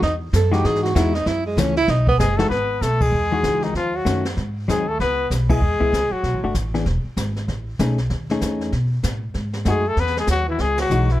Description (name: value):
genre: jazz, small-group swing and bop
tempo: 193 BPM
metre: 4/4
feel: swing 62% on 8ths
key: E major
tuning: A4 = 440 Hz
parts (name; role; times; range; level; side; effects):
- breathy tenor saxophone; second line; 0.0-6.4, 9.7-11.2 s; D#3 to A4; -24 LUFS; right 3 dB; none
- upright bass; bass; 0.0-11.2 s; E1 to B2; -22 LUFS; equal; none
- jazz brush drum kit; drums; 0.0-11.2 s; brushed snare drum, hi-hat, kick drum, ride cymbal, snare drum; -27 LUFS; equal; none
- hollow-body jazz guitar; accompaniment; 0.5-11.1 s; D#3 to G#4; -23 LUFS; left 3 dB; none
- warm trumpet; melody; 2.2-6.4, 9.7-11.2 s; D#4 to B4; -22 LUFS; left 3 dB; plate reverb
room: light reverb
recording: dark, warm production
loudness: -18 LUFS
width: side -14 dB against mid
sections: 0.0-2.5 A section; 2.5-11.2 B section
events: tenor saxophone solo 0.0-2.5; band accent 3.0, 5.5, 10.7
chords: 0.0 Emaj9; 1.3 F#m7; 1.9 B; 2.5 Emaj9; 3.7 D#m7b5; 4.4 G#7; 5.0 C#m7; 6.2 Bm7; 6.9 E; 7.5 Amaj9#11; 8.7 B7; 10.0 Emaj9